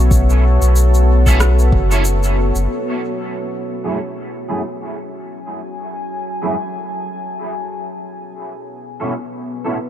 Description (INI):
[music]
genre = ambient dub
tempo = 93 BPM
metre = 4/4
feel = swing 57% on 16ths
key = F# minor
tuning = A4 = 441 Hz
[part]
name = deep dark ambient pad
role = sustained chords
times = 0.0-9.9 s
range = B3 to A5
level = -22 LUFS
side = left 1 dB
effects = chorus, built-in reverb
[part]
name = warm sub bass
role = bass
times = 0.0-2.7 s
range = F#1 to B1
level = -12 LUFS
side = equal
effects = none
[part]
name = electronic cabasa and rim click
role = drums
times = 0.1-2.7 s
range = none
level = -25 LUFS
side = equal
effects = none
[part]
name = electronic kick drum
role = drums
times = 0.1-1.9 s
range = none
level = -17 LUFS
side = equal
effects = overdrive
[part]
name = electric guitar at the edge of break-up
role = stabs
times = 1.3-9.8 s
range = F#2 to A4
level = -26 LUFS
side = right 2 dB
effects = ensemble chorus, low-pass filter, dub echo
[sound]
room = light reverb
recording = none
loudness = -15 LUFS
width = side -11 dB against mid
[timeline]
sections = 0.0-2.7 A section; 2.7-9.9 B section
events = none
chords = 0.0 F#m7; 7.9 B7sus4